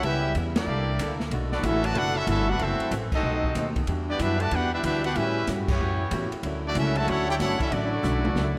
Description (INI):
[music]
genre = jazz, big band swing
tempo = 187 BPM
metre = 4/4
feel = swing 64% on 8ths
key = D major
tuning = A4 = 440 Hz
[part]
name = brilliant trumpet section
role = melody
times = 0.0-8.6 s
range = A3 to A5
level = -31 LUFS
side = equal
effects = none
[part]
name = warm trombone section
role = second line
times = 0.0-8.6 s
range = C#3 to G4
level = -34 LUFS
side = equal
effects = none
[part]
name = hollow-body jazz guitar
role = accompaniment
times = 0.0-8.6 s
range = F#2 to A4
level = -36 LUFS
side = equal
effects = none
[part]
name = warm saxophone section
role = sustained chords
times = 0.0-8.6 s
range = B2 to A4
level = -39 LUFS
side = equal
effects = none
[part]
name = upright bass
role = bass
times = 0.0-8.6 s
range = F#1 to A2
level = -31 LUFS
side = equal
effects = none
[part]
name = open jazz drum kit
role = drums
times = 0.0-8.5 s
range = crash cymbal, hi-hat, kick drum, ride cymbal, snare drum, toms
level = -35 LUFS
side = equal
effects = none
[sound]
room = moderate concert hall reverb, RT60 2.1 s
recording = none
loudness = -26 LUFS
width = mono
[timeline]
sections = 0.0-8.6 A section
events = band accent 0.5, 3.1, 5.6; drum fill 8.0-8.6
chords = 0.0 C#m7b5; 0.7 C13; 1.3 Bm7; 2.6 F#m7b5; 3.2 B7b9; 3.9 Em9; 5.2 A13; 6.4 Dmaj9